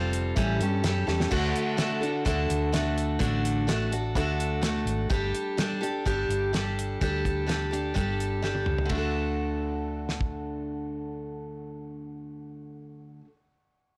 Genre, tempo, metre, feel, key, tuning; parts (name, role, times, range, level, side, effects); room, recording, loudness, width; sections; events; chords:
folk rock and heartland rock; 126 BPM; 4/4; straight; D major; A4 = 440 Hz
picked steel-string acoustic guitar; accompaniment; 0.0-13.3 s; A2 to A4; -31 LUFS; equal
hollow-body short-scale fingered electric bass; bass; 0.0-13.2 s; F1 to G2; -33 LUFS; equal
damped 70s drum kit; drums; 0.1-10.3 s; crash cymbal, hi-hat, kick drum, ride cymbal, snare drum, toms; -34 LUFS; equal
light reverb; blown-out, overdriven recording, overdrive; -28 LUFS; mono
0.0-1.3 A section; 1.3-8.9 B section; 8.9-12.7 C section
drum fill 1.1, 8.4-8.9
0.4 A7; 1.3 D; 5.1 Gsus2; 8.9 D